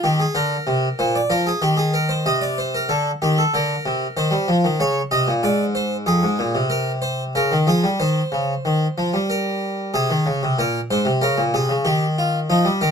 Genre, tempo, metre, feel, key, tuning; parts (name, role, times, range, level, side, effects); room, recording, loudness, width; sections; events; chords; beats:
classical, baroque-style two-part invention for harpsichord; 94 BPM; 3/4; straight; Eb major, Ab major from 6.1 s; A4 = 439 Hz
harpsichord; solo; 0.0-12.9 s; F2 to Eb5; -18 LUFS; equal
little or no reverb; close, detailed microphones; -18 LUFS; side -7 dB against mid
0.0-2.3 A section; 2.3-10.0 B section; 10.0-12.9 C section
0.4 Bb; 1.6 Eb; 2.3 Cm13; 3.5 Bb/D; 4.2 Eb7; 5.4 Ab; 6.1 Fm (rootless); 7.4 Db; 8.0 Dbmaj9#11; 9.3 Gm; 10.0 Ab/C; 11.2 Bbm7; 11.9 Eb
| 0.36 0.99 1.63 | 2.27 2.91 3.55 | 4.18 4.82 5.45 | 6.08 6.71 7.35 | 8.00 8.65 9.30 | 9.95 10.59 11.23 | 11.87 12.50